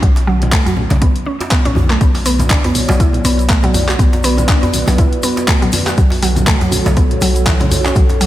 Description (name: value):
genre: afro house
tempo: 121 BPM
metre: 4/4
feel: swing 56% on 16ths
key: B minor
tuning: A4 = 440 Hz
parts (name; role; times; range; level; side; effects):
- mallet-like synth pluck; arpeggios; 0.0-8.3 s; C#3 to F#4; -18 LUFS; right 1 dB; chorus, vintage 12-bit sampler grit, sidechain pumping, tape echo
- warm 808-style bass; bass; 0.0-8.3 s; B1; -17 LUFS; equal; sidechain pumping
- deep house drum kit; drums; 0.0-8.3 s; handclaps, hi-hat; -20 LUFS; left 1 dB; none
- electronic kick drum; drums; 0.0-8.1 s; none; -14 LUFS; equal; none
- congas; percussion; 0.2-8.3 s; none; -24 LUFS; left 1 dB; none
- djembe; percussion; 0.2-8.2 s; none; -24 LUFS; right 1 dB; none
- dark analog pad; sustained chords; 2.5-8.3 s; B3 to D5; -22 LUFS; equal; chorus, sidechain pumping
- tube shaker; percussion; 2.0-8.3 s; none; -29 LUFS; left 4 dB; none
room: light reverb, digital ambience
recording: none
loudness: -11 LUFS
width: side -14 dB against mid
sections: 0.0-8.3 A section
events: none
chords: 0.0 F#m/B; 2.0 Bmadd9; 6.0 F#m/B